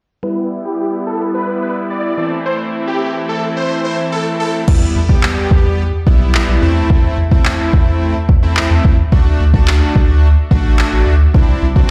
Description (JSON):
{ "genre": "dance-pop", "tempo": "108 BPM", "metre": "4/4", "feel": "straight", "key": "A dorian", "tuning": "A4 = 442 Hz", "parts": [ { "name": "supersaw chords", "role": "melody", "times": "0.2-4.5 s", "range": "G4 to D5", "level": "-24 LUFS", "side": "equal", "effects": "sidechain pumping, low-pass filter, delay" }, { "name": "big bright polysynth", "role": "accompaniment", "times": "0.2-11.9 s", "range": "E3 to G4", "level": "-21 LUFS", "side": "equal", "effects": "chorus, sidechain pumping, low-pass filter" }, { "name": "warm sub bass", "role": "bass", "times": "4.7-11.9 s", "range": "A1 to E2", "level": "-15 LUFS", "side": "equal", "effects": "sidechain pumping" }, { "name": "smooth R&B drum kit", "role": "drums", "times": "4.7-11.9 s", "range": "crash cymbal, handclaps, kick drum", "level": "-15 LUFS", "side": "equal", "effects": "none" } ], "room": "light reverb", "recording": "played on a big sound system in a bare room, large studio reverb", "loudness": "-14 LUFS", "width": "mono", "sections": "0.2-4.7 A section; 4.7-11.9 B section", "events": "filter sweep 0.2-4.7; hi-hats muted 11.3-11.9", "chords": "0.2 Em; 2.2 Am/E; 4.7 Em; 6.6 Am/E; 9.1 D; 11.3 Cadd9" }